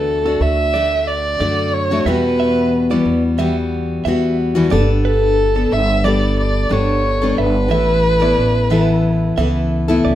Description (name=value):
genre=acoustic pop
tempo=90 BPM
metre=4/4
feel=swing 55% on 16ths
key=D major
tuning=A4 = 440 Hz
part: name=dark violin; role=melody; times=0.0-9.7 s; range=A4 to E5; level=-18 LUFS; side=right 1 dB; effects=none
part: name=picked steel-string acoustic guitar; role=accompaniment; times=0.0-10.2 s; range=E2 to A4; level=-18 LUFS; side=left 2 dB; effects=none
part: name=direct-recorded clean electric guitar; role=arpeggios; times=0.0-10.2 s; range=D4 to E5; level=-27 LUFS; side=right 9 dB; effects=none
part: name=upright bass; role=bass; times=0.0-10.2 s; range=G1 to F#2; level=-20 LUFS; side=right 1 dB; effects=none
room=moderate studio reverb, RT60 0.6 s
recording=rough home demo mix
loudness=-14 LUFS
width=side -12 dB against mid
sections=0.0-10.2 A section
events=none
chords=0.0 D; 2.1 Emadd9; 4.7 Gadd9; 7.7 Asus2